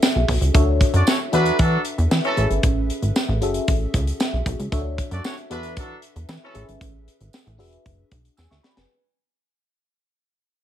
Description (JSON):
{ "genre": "early-eighties boogie funk", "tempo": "115 BPM", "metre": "4/4", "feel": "straight", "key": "unclear", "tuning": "A4 = 440 Hz", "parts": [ { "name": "FM electric piano with soft pad layer", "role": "accompaniment", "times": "0.0-9.0 s", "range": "C#4 to E6", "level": "-26 LUFS", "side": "left 2 dB", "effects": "chorus, phaser" }, { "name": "tight funk drum kit", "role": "drums", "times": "0.0-8.9 s", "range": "hi-hat, kick drum, snare drum", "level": "-21 LUFS", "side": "equal", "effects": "none" }, { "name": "tambourine", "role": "percussion", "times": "0.0-8.5 s", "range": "none", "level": "-32 LUFS", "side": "right 10 dB", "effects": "none" }, { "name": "plucky analog bass", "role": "bass", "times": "0.2-8.9 s", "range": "E1 to E3", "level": "-21 LUFS", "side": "equal", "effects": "none" }, { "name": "bright horn section", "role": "second line", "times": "0.9-6.6 s", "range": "E3 to D5", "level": "-25 LUFS", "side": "right 1 dB", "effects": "none" } ], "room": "small room ambience", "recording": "none", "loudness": "-18 LUFS", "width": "side -11 dB against mid", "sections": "0.0-8.9 A section", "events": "fade-out 0.0-8.9; drum fill 8.4-8.9", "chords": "0.0 F#m9; 0.5 Dmaj9; 1.3 E9sus4; 2.4 Amaj9; 3.4 F#m9; 4.7 Dmaj9; 5.5 E9sus4; 6.5 Amaj9; 7.6 E9" }